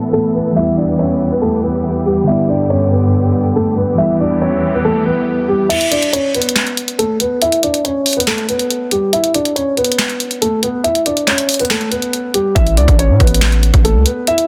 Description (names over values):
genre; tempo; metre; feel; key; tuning
hip hop, trap; 140 BPM; 4/4; half-time; E dorian; A4 = 440 Hz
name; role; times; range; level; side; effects
dark concert grand piano; melody; 0.0-14.4 s; G3 to E5; -18 LUFS; equal; low-pass filter
soft electric-piano-like synth keys; accompaniment; 0.0-5.7 s; D3 to E4; -20 LUFS; equal; chorus
warm symphonic string section; sustained chords; 0.0-5.7 s; E2 to A4; -21 LUFS; equal; none
trap drum kit; drums; 5.7-14.5 s; crash cymbal, handclaps, hi-hat, kick drum, snare drum; -18 LUFS; equal; none
distorted 808-style bass; bass; 12.6-14.1 s; A1 to A2; -14 LUFS; equal; distortion
room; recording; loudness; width
light reverb, digital ambience; dense, heavily limited modern master, low-pass filter; -15 LUFS; mono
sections
0.0-5.7 A section; 5.7-14.5 B section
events
filter sweep 0.0-5.7; kick muted 5.7-12.6; filter sweep on grand piano 5.7-12.6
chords
0.0 Asus2; 0.6 Em; 2.3 G; 4.0 Em; 5.7 N.C.; 12.6 Asus2